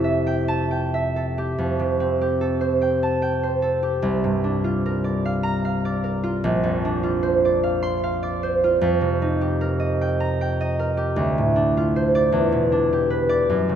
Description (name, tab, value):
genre	classical, solo harp piece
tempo	50 BPM (dotted quarters)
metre	6/8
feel	uneven beats, rubato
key	F major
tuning	A4 = 439 Hz
part	concert harp	solo	0.0-13.8 s	F1 to C6	-19 LUFS	right 1 dB	none
room	wet church reverb, RT60 2.8 s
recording	none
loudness	-19 LUFS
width	side -9 dB against mid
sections	0.0-1.6 A section; 1.6-13.8 B section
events	none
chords	0.0 Fmaj9; 1.6 Fadd9; 4.0 C9sus4; 6.4 Bbadd9; 8.8 F9sus4; 11.2 Dm7; 12.3 Em7